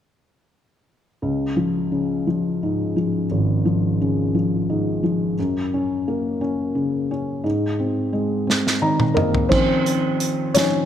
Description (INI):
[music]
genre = six-eight pop ballad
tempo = 58 BPM (dotted quarters)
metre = 6/8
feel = straight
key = Db major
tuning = A4 = 441 Hz
[part]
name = felt-muted upright piano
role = accompaniment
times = 1.2-10.9 s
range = Ab1 to Bb5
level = -19 LUFS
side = left 1 dB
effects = none
[part]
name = loose indie drum kit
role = drums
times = 8.5-10.7 s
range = crash cymbal, hi-hat, kick drum, snare drum, toms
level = -22 LUFS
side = right 2 dB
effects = none
[sound]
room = moderate scoring stage reverb, RT60 1.9 s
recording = none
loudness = -19 LUFS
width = side -10 dB against mid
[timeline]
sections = 1.2-9.5 A section; 9.5-10.9 B section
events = felt piano fill 8.5-9.5; drum fill 8.5-9.5; felt piano solo 9.5-10.9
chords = 1.2 Db; 5.4 Gb; 7.4 Abadd9; 9.5 Dbadd9